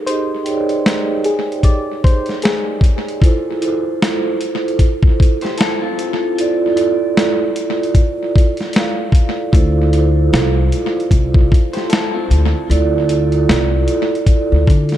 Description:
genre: lo-fi hip hop.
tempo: 76 BPM.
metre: 4/4.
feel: swing 60% on 16ths.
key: D minor.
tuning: A4 = 439 Hz.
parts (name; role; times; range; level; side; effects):
vibraphone with soft mallets; accompaniment; 0.0-15.0 s; Eb4 to G5; -18 LUFS; right 3 dB; tape echo.
soft struck synth lead; melody; 0.1-2.8 s; Ab4 to D5; -22 LUFS; left 3 dB; chorus, tape echo.
dusty soul sampler-style drum kit; drums; 0.1-15.0 s; hi-hat, kick drum, snare drum; -15 LUFS; left 1 dB; tape echo.
electric guitar through a small old amp; second line; 5.4-7.0, 11.7-13.3 s; C4 to C5; -23 LUFS; left 3 dB; wide subtle chorus, tape echo.
upright bass; bass; 9.5-15.0 s; C2 to D3; -14 LUFS; equal; none.
room: moderate spring reverb, RT60 2.7 s.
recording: echo-heavy mix.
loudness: -13 LUFS.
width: side -12 dB against mid.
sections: 0.0-15.0 A section.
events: break 0.0-3.2; vibraphone fill 8.3-9.5.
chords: 0.0 Fm9 (rootless); 3.2 Dm9.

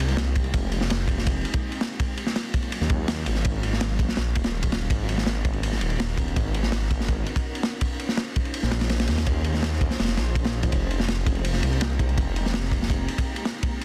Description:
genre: drum and bass, jungle.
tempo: 165 BPM.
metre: 4/4.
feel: straight.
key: F phrygian.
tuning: A4 = 443 Hz.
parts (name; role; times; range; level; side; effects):
detuned saw bass; bass; 0.0-13.1 s; Eb1 to Eb2; -28 LUFS; equal; none.
crunchy breakbeat drum kit; drums; 0.0-13.8 s; kick drum, ride cymbal, snare drum; -28 LUFS; equal; none.
wind-like tuned noise texture; texture; 11.4-13.8 s; Bb5; -47 LUFS; equal; none.
room: little or no reverb.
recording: dense, heavily limited modern master.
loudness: -25 LUFS.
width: mono.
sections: 0.0-13.8 A section.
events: none.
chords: 0.0 Fm11; 2.0 Ebm11; 4.9 Abm11; 7.8 Bbm11; 10.7 Fm11.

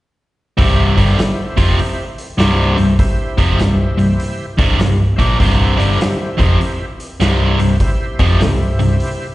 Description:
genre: blues rock power trio and southern rock.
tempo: 100 BPM.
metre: 4/4.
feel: swing 65% on 8ths.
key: C major.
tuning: A4 = 440 Hz.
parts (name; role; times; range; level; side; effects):
overdriven tonewheel organ; sustained chords; 0.6-9.3 s; E4 to E5; -26 LUFS; right 1 dB; slow rotary speaker, chorus vibrato.
distorted electric guitar; riff; 0.6-9.0 s; C2 to Bb3; -17 LUFS; equal; overdrive, slapback echo.
vintage muted picked electric bass; bass; 0.6-9.0 s; C1 to Bb1; -15 LUFS; equal; none.
vintage drum kit; drums; 0.6-9.2 s; hi-hat, kick drum, snare drum; -17 LUFS; equal; none.
room: small room ambience.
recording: live gig heard through the venue's PA, recital hall reverb, nothing above 10.9 kHz.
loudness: -12 LUFS.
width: side -17 dB against mid.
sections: 0.6-9.3 A section.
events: none.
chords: 0.6 C.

